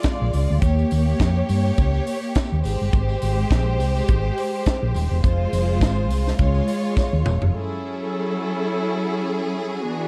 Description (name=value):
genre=disco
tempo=104 BPM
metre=4/4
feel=swing 56% on 16ths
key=unclear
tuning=A4 = 440 Hz
part: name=clear studio string section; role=second line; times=0.0-7.5 s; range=Ab3 to D5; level=-27 LUFS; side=equal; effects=none
part: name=tight funk drum kit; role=drums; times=0.0-7.5 s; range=hi-hat, kick drum, snare drum, toms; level=-25 LUFS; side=equal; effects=none
part: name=tambourine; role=percussion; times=0.0-7.4 s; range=none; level=-48 LUFS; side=equal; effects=none
part: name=hollow-body short-scale fingered electric bass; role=bass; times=0.2-7.5 s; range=Eb1 to G2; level=-23 LUFS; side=equal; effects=none
part: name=clear studio string section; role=sustained chords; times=7.5-10.1 s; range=E3 to A4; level=-26 LUFS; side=equal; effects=none
room=little or no reverb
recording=dark, warm production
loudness=-22 LUFS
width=mono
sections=0.0-7.5 A section; 7.5-10.1 B section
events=drum fill 7.0-7.5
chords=0.0 Fm; 0.6 Eb7; 2.6 Abmaj7; 5.2 Fm; 6.4 Db; 7.5 F#m7